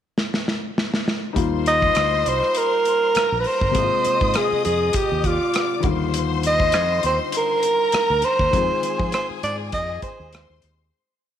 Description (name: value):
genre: lush 1970s-style soul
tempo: 100 BPM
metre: 4/4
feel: swing 54% on 16ths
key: Eb major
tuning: A4 = 440 Hz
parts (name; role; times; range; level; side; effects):
- modern studio drum kit; drums; 0.2-10.8 s; hi-hat, kick drum, rim click, snare drum; -25 LUFS; equal; none
- warm studio violin section; second line; 1.3-10.9 s; Ab4 to Eb6; -28 LUFS; left 10 dB; none
- warm concert grand piano; accompaniment; 1.3-11.0 s; C3 to F4; -29 LUFS; left 8 dB; none
- fingered electric bass; bass; 1.4-10.9 s; G1 to F3; -26 LUFS; equal; none
- breathy alto saxophone; melody; 1.7-10.6 s; F4 to Eb5; -20 LUFS; right 2 dB; slapback echo
room: moderate echo chamber reverb, RT60 2.2 s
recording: 1960s-style stereo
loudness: -18 LUFS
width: side -9 dB against mid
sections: 0.0-1.4 pickup bar; 1.4-10.9 verse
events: drum fill 0.2-1.4; fade-out 8.5-10.9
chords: 0.0 N.C.; 1.4 Ebadd9; 3.8 Ab69; 5.8 Ebmaj9; 8.5 Fm7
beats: 0.16 0.76 | 1.36 1.96 2.56 3.15 | 3.75 4.35 4.95 5.55 | 6.14 6.74 7.34 7.94 | 8.54 9.13 9.73 10.33